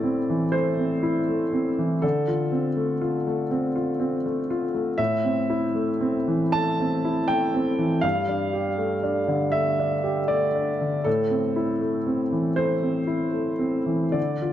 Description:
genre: neoclassical minimalist piano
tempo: 80 BPM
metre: 4/4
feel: rubato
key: A minor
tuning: A4 = 440 Hz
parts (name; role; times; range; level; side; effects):
- warm upright piano; solo; 0.0-14.5 s; G2 to A5; -22 LUFS; equal; none
room: moderate scoring stage reverb, RT60 1.9 s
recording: none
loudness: -22 LUFS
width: side -11 dB against mid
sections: 0.0-14.5 A section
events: none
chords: 0.0 Am; 2.0 Dm7; 5.0 Am; 8.0 Gsus2; 11.1 Am

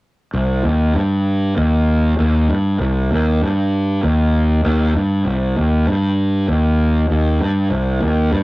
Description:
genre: metal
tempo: 98 BPM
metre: 4/4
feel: straight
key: C minor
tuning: A4 = 440 Hz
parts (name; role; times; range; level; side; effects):
- fuzz fingered electric bass; bass; 0.3-8.4 s; C2 to G2; -14 LUFS; equal; overdrive
room: light reverb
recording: rough rehearsal-room recording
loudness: -14 LUFS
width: side -20 dB against mid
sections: 0.3-8.4 A section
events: none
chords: none

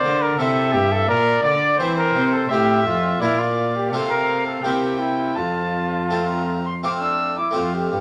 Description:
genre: classical, baroque-style sonata movement with continuo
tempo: 84 BPM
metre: 3/4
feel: straight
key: F major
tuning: A4 = 441 Hz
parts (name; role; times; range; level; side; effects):
- mellow trumpet; melody; 0.0-8.0 s; C4 to D5; -24 LUFS; equal; none
- dark violin; second line; 0.0-7.6 s; C5 to E6; -26 LUFS; equal; none
- harpsichord; accompaniment; 0.0-8.0 s; F2 to F4; -28 LUFS; equal; none
- warm cello; bass; 0.0-8.0 s; F2 to E3; -27 LUFS; equal; none
room: moderate large studio reverb, RT60 1.2 s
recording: none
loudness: -20 LUFS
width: mono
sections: 0.0-7.6 A section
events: none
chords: 0.4 C; 1.1 C7/Bb; 2.5 F/A; 3.2 Bb6; 3.9 F/C; 4.6 C7; 5.4 F

